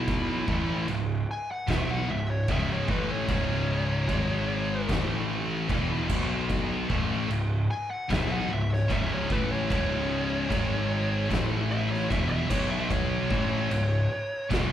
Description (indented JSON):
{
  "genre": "stoner and doom metal",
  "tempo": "75 BPM",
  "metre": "4/4",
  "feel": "straight",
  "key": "C# minor",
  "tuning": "A4 = 439 Hz",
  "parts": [
    { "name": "fuzz lead guitar", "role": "melody", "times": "0.0-14.5 s", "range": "E4 to G#5", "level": "-33 LUFS", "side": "right 1 dB", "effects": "distortion" },
    { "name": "high-gain distorted guitar", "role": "riff", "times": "0.0-14.7 s", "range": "C#2 to B3", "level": "-32 LUFS", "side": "equal", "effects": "distortion" },
    { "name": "thick fuzz guitar", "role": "riff", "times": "0.0-14.7 s", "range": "C#2 to B3", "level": "-33 LUFS", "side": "left 7 dB", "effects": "distortion" },
    { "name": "thick fuzz guitar", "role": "riff", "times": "0.0-14.7 s", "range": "C#2 to B3", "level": "-33 LUFS", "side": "right 3 dB", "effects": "distortion" },
    { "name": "fuzz picked electric bass", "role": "bass", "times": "0.0-14.7 s", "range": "C#1 to B1", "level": "-33 LUFS", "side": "equal", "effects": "overdrive" },
    { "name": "oversized low-tuned drum kit", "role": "drums", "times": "0.1-14.7 s", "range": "crash cymbal, kick drum, snare drum", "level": "-31 LUFS", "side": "equal", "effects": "none" }
  ],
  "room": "moderate large studio reverb, RT60 0.9 s",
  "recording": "band playing live in one room",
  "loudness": "-25 LUFS",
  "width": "side -10 dB against mid",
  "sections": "0.0-14.7 A section",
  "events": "lead electric guitar solo 0.0-14.7",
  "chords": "0.5 C#m; 4.1 G#5; 4.9 A5; 5.7 E5; 6.1 B5; 6.9 C#m; 10.5 G#5; 11.3 A5; 12.1 E5; 12.5 B5; 13.3 C#m"
}